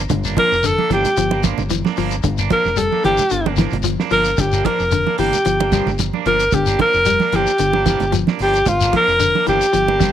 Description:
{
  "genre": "afrobeat",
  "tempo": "112 BPM",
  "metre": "4/4",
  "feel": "swing 54% on 16ths",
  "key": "G dorian",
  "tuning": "A4 = 440 Hz",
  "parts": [
    { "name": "fingered electric bass", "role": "bass", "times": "0.0-10.1 s", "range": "F1 to G1", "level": "-23 LUFS", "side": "equal", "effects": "none" },
    { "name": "semi-hollow electric guitar", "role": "arpeggios", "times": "0.1-10.1 s", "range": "D3 to G3", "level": "-24 LUFS", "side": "left 11 dB", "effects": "none" },
    { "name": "cloth-damped thuddy drum kit", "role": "drums", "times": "0.1-10.1 s", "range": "hi-hat, kick drum, snare drum", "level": "-22 LUFS", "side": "right 4 dB", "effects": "none" },
    { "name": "congas", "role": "percussion", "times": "0.1-10.0 s", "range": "none", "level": "-24 LUFS", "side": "right 10 dB", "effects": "none" },
    { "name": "shekere", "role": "percussion", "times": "0.1-10.1 s", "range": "none", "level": "-25 LUFS", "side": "left 6 dB", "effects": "none" },
    { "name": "electric guitar at the edge of break-up", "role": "stabs", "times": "0.3-10.1 s", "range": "F3 to D4", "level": "-26 LUFS", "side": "right 12 dB", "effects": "tape echo" },
    { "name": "breathy alto saxophone", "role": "melody", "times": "0.4-10.1 s", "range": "F4 to Bb4", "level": "-16 LUFS", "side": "equal", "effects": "none" }
  ],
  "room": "small room ambience",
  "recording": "1960s-style stereo with parts hard left and right",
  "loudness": "-14 LUFS",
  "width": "side -10 dB against mid",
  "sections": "0.0-10.1 A section",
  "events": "alto saxophone solo 0.0-10.1",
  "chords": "0.0 Gm7",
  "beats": "| 0.10 0.64 1.18 1.71 | 2.25 2.78 3.32 3.85 | 4.39 4.92 5.46 6.00 | 6.53 7.07 7.60 8.13 | 8.67 9.20 9.74"
}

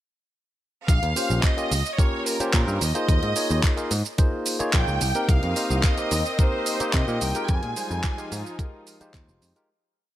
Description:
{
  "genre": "nu-disco, nu disco",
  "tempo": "109 BPM",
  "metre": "4/4",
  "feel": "straight",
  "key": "Bb dorian",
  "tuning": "A4 = 441 Hz",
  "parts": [
    { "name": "clear symphonic violin section", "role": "melody", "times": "0.9-8.6 s", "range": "Bb4 to Ab5", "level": "-29 LUFS", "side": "right 1 dB", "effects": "analog delay" },
    { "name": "picked electric bass", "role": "bass", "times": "0.9-9.5 s", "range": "F1 to C3", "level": "-26 LUFS", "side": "equal", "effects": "none" },
    { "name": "electronic kick drum", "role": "drums", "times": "0.9-9.3 s", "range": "none", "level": "-21 LUFS", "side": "equal", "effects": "none" },
    { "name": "pop drum kit", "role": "drums", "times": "0.9-9.7 s", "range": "handclaps, hi-hat, shaker", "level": "-28 LUFS", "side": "right 2 dB", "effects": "overdrive" },
    { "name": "barky tine electric piano", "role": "accompaniment", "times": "1.2-9.7 s", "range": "G3 to F5", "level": "-29 LUFS", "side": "left 1 dB", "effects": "overdrive" },
    { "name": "dark studio string section", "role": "sustained chords", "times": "5.3-9.7 s", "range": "F3 to Eb5", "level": "-34 LUFS", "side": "equal", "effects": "sidechain pumping" }
  ],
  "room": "little or no reverb",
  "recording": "none",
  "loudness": "-21 LUFS",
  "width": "side -13 dB against mid",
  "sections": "0.9-9.7 drop",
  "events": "drop 0.9-9.7; fade-out 6.8-9.7",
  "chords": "0.9 Bbm69; 2.8 Eb9sus4; 5.0 Cm7; 7.5 Fm9",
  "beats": "| 0.89 1.44 1.99 2.54 | 3.09 3.64 4.19 4.74 | 5.29 5.84 6.39 6.94 | 7.49 8.04 8.59 9.14"
}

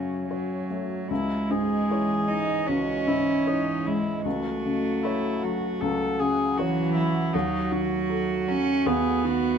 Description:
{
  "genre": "neoclassical piano and strings",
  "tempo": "77 BPM",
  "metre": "4/4",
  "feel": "rubato",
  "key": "unclear",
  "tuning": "A4 = 440 Hz",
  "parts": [
    { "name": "warm cello", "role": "second line", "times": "0.0-9.6 s", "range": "E3 to D#4", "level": "-26 LUFS", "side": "right 3 dB", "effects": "none" },
    { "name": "felt-muted upright piano", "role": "accompaniment", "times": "0.0-9.6 s", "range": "C#2 to C#5", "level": "-29 LUFS", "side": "left 3 dB", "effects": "none" },
    { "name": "rich viola", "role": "accompaniment", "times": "0.0-9.6 s", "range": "C#4 to A4", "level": "-30 LUFS", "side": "equal", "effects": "none" },
    { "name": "dark analog pad", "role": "sustained chords", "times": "0.0-9.6 s", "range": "E3 to F#5", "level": "-34 LUFS", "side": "equal", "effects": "chorus, phaser" }
  ],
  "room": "light reverb",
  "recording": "minimal, uncompressed stereo recording",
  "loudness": "-23 LUFS",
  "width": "side -7 dB against mid",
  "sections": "0.0-9.6 A section",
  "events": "none",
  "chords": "0.0 F#m; 1.1 C#madd9; 4.2 F#m/C#; 7.3 D#dim",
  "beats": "0.29 | 1.10 1.89 2.67 3.46 | 4.25 5.03 5.81 6.57 | 7.33 8.10 8.86"
}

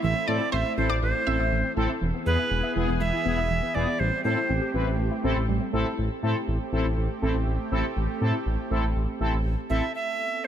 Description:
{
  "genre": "pop",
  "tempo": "121 BPM",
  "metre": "4/4",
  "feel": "straight",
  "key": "A minor",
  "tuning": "A4 = 441 Hz",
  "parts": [
    { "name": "bright reedy alto recorder", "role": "melody", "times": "0.0-4.7, 9.7-10.5 s", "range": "B4 to E5", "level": "-28 LUFS", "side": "right 3 dB", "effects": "ping-pong delay" },
    { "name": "lush unison pad", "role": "sustained chords", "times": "0.0-10.5 s", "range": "E3 to A4", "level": "-34 LUFS", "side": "right 1 dB", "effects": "chorus" },
    { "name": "soft round pluck", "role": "arpeggios", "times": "0.0-6.0 s", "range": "E3 to E5", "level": "-33 LUFS", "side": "left 1 dB", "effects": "chorus, phaser, ping-pong delay" },
    { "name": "smooth synth bass", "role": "bass", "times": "0.0-9.8 s", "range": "E1 to A2", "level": "-26 LUFS", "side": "equal", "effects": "none" },
    { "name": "analog pluck", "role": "second line", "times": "0.3-1.4 s", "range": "C5 to E5", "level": "-34 LUFS", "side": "equal", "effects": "chorus, ping-pong delay" },
    { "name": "analog synth brass", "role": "accompaniment", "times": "0.3-9.8 s", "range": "B3 to B4", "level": "-30 LUFS", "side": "left 1 dB", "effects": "chorus" }
  ],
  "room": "light reverb",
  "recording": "none",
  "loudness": "-23 LUFS",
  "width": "side -10 dB against mid",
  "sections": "0.0-6.0 A section; 6.0-9.9 B section",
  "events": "none",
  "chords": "0.0 Am; 2.0 E; 4.0 Am7; 9.9 Amadd9",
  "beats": "| 0.03 0.52 1.02 1.52 | 2.01 2.51 3.00 3.50 | 4.00 4.49 4.99 5.48 | 5.98 6.47 6.97 7.47 | 7.96 8.46 8.95 9.45 | 9.95 10.44"
}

